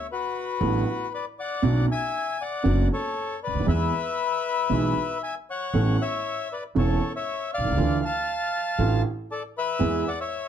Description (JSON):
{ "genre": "tango", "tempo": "118 BPM", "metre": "4/4", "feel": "rubato", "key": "unclear", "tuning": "A4 = 437 Hz", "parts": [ { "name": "bandoneon", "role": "melody", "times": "0.0-10.5 s", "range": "F#4 to A5", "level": "-27 LUFS", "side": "left 4 dB", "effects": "none" }, { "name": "dark concert grand piano", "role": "accompaniment", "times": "0.6-10.0 s", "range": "E1 to A4", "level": "-25 LUFS", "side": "right 3 dB", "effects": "none" }, { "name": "upright bass", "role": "bass", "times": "0.6-10.0 s", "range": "E1 to E2", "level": "-26 LUFS", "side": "equal", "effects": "none" } ], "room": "moderate club reverb, RT60 0.7 s", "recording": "dark, warm production", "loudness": "-23 LUFS", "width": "side -9 dB against mid", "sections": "0.0-10.5 A section", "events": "none", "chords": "0.0 D6; 1.6 Bmadd9; 3.7 E; 5.7 Aadd9; 7.8 Dmadd9; 9.8 E" }